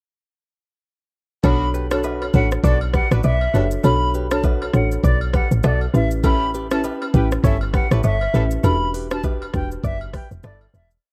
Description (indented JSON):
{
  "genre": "afrobeats",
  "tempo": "100 BPM",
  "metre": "4/4",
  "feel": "swing 58% on 16ths",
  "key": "B minor",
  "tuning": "A4 = 440 Hz",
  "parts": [
    { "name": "bright silver concert flute", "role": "melody", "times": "1.4-10.9 s", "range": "D5 to B5", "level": "-28 LUFS", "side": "equal", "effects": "dub echo" },
    { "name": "warm horn section", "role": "second line", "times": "1.4-8.4 s", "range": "B3 to B4", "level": "-35 LUFS", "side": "equal", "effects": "none" },
    { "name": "folk marimba with medium mallets", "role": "accompaniment", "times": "1.4-9.8 s", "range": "C#4 to C#5", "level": "-27 LUFS", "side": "equal", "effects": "dub echo" },
    { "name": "direct-recorded clean electric guitar", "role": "riff", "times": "1.4-10.7 s", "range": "E4 to D5", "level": "-32 LUFS", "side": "equal", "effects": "dub echo" },
    { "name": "woody log drum bass", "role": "bass", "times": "1.4-11.0 s", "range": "E1 to B1", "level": "-22 LUFS", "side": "equal", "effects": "none" },
    { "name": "afro-pop drum kit", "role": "drums", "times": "1.4-11.0 s", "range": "hi-hat, kick drum, rim click, shaker", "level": "-24 LUFS", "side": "equal", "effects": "overdrive" },
    { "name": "agogo bells and woodblock", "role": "percussion", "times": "1.4-10.7 s", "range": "none", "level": "-37 LUFS", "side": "equal", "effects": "dub echo" }
  ],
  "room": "light reverb",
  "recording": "echo-heavy mix",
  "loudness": "-19 LUFS",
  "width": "mono",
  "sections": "1.4-11.0 chorus",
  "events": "fade-out 8.6-11.0",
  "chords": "1.4 Bm7; 5.9 A7; 8.6 Em7",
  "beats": "| 1.44 2.04 2.64 3.24 | 3.84 4.44 5.04 5.64 | 6.24 6.84 7.44 8.04 | 8.64 9.24 9.84 10.44"
}